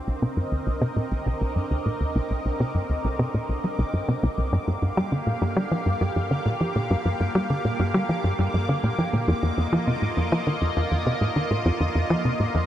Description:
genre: ambient, sequencer-driven space music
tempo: 101 BPM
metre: 4/4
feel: straight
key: unclear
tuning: A4 = 440 Hz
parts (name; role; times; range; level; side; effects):
- lush unison pad; sustained chords; 0.0-12.7 s; Bb3 to F5; -29 LUFS; right 1 dB; chorus, phaser
- tight sequencer bass; riff; 0.0-12.7 s; C2 to G3; -23 LUFS; equal; tape echo
- bubbling stepped-filter texture; texture; 0.0-12.7 s; D3 to D6; -35 LUFS; equal; chorus, built-in reverb
room: moderate huge ambient reverb, RT60 8.2 s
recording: cassette tape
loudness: -22 LUFS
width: side -12 dB against mid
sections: 0.0-12.7 A section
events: fade-in on analog synth pad 0.0-12.7; fade-in on synth texture 0.0-12.7; filter sweep on analog synth bass 0.0-12.7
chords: 0.0 Cm7; 4.5 Gm7; 9.3 F7sus4

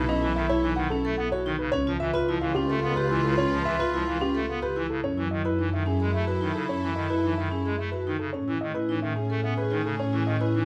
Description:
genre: classical, minimalist pattern music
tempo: 109 BPM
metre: 3/4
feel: straight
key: unclear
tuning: A4 = 440 Hz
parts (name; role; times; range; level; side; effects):
- dark baby grand piano; melody; 0.0-10.6 s; G4 to F#5; -34 LUFS; equal; none
- clear clarinet; second line; 0.0-10.7 s; C#4 to E#4; -36 LUFS; equal; none
- pipe organ, clarinet reed; accompaniment; 0.0-10.6 s; C#3 to B3; -36 LUFS; equal; none
- clear symphonic string section; sustained chords; 0.0-10.7 s; C#4 to B4; -42 LUFS; equal; none
- rich symphonic double bass section; bass; 0.0-10.7 s; B1 to A2; -32 LUFS; equal; none
- vibraphone with medium hard mallets; arpeggios; 0.1-10.7 s; C#4 to A4; -31 LUFS; equal; none
room: little or no reverb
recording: close, detailed microphones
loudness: -27 LUFS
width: mono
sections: 0.0-10.7 A section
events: none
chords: 0.0 B9sus4; 1.7 C#7alt; 5.0 F#m11; 8.3 Amaj9

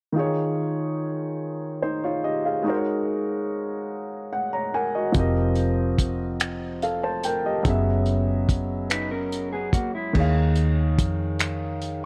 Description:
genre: slow six-eight R&B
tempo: 48 BPM (dotted quarters)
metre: 6/8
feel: straight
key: unclear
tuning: A4 = 440 Hz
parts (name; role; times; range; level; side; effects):
- warm baby grand piano; accompaniment; 0.1-12.1 s; Eb3 to Bb5; -27 LUFS; equal; none
- cloth-damped thuddy drum kit; drums; 5.1-12.0 s; crash cymbal, finger snaps, hi-hat, kick drum; -27 LUFS; equal; none
- vintage muted fingered electric bass; bass; 5.2-12.1 s; F1 to F2; -28 LUFS; equal; none
- mellow electric guitar; second line; 8.9-10.3 s; Ab3 to Cb5; -31 LUFS; equal; none
room: little or no reverb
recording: dry, close 1970s-style studio recording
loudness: -25 LUFS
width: mono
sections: 0.1-10.2 A section; 10.2-12.1 B section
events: grand piano fill 3.9-5.2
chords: 0.1 Eb9sus4; 2.6 Ab9sus4; 5.2 F9sus4; 7.7 Gb9sus4; 10.2 Eb9sus4

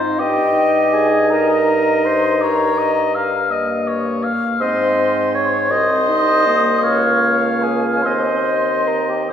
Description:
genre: classical, slow romantic movement for wind quintet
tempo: 47-56 BPM (dotted quarters)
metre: 12/8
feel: rubato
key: unclear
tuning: A4 = 440 Hz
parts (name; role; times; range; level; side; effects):
- mellow hollow silver concert flute; melody; 0.0-9.3 s; Eb5 to Eb6; -22 LUFS; left 4 dB; none
- warm oboe; second line; 0.0-9.3 s; C5 to F5; -19 LUFS; left 1 dB; none
- mellow French horn; accompaniment; 0.0-9.3 s; Bb3 to Eb4; -24 LUFS; right 1 dB; none
- warm clarinet; accompaniment; 0.0-9.3 s; Eb4 to Eb5; -19 LUFS; right 2 dB; none
- mellow bassoon; bass; 0.0-9.3 s; C2 to Ab2; -22 LUFS; equal; none
room: wet scoring stage reverb, RT60 1.6 s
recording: recorded in a church or concert hall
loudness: -14 LUFS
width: side -8 dB against mid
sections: 0.0-9.3 A section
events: none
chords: 0.2 Eb/G; 4.6 Ab; 6.8 Db6; 8.0 Eb6

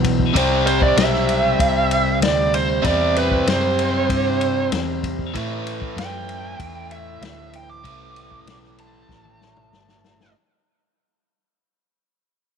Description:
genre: blues rock power trio and southern rock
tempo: 96 BPM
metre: 4/4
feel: straight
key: unclear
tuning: A4 = 444 Hz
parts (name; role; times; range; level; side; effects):
- biting overdriven guitar; riff; 0.0-10.3 s; E2 to C4; -21 LUFS; left 1 dB; none
- vintage muted fingered electric bass; bass; 0.0-10.3 s; G1 to A2; -26 LUFS; equal; none
- vintage drum kit; drums; 0.0-10.3 s; kick drum, ride cymbal, snare drum, toms; -24 LUFS; left 4 dB; none
- bluesy overdriven lead guitar; melody; 0.7-10.3 s; B4 to D6; -22 LUFS; right 4 dB; distortion
room: light reverb, studio reverb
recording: 1960s-style stereo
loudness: -17 LUFS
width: side -7 dB against mid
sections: 0.0-10.3 A section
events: fade-out 0.0-10.3; drum fill 9.1-10.3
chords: 0.4 C; 5.3 Am

